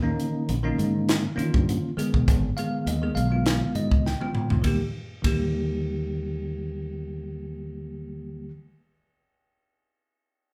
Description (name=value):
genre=electric jazz fusion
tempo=101 BPM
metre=4/4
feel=straight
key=Eb mixolydian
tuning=A4 = 440 Hz
part: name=bell-like tine electric piano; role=accompaniment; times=0.0-8.5 s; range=Eb3 to G5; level=-31 LUFS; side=equal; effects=none
part: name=fingered electric bass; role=bass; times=0.0-8.5 s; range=Ab1 to Eb3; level=-30 LUFS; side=equal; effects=none
part: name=crisp fusion drum kit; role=drums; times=0.2-5.4 s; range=hi-hat, kick drum, ride cymbal, snare drum, toms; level=-28 LUFS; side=equal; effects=none
room=moderate large studio reverb, RT60 0.8 s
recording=band playing live in one room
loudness=-26 LUFS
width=mono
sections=0.0-4.7 A section; 4.7-7.0 B section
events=drum fill 4.1-4.7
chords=0.0 Eb7sus4; 2.0 Abm; 4.7 Eb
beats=0.48 1.08 1.67 | 2.27 2.86 3.46 4.06 | 4.65 5.25 5.84 6.44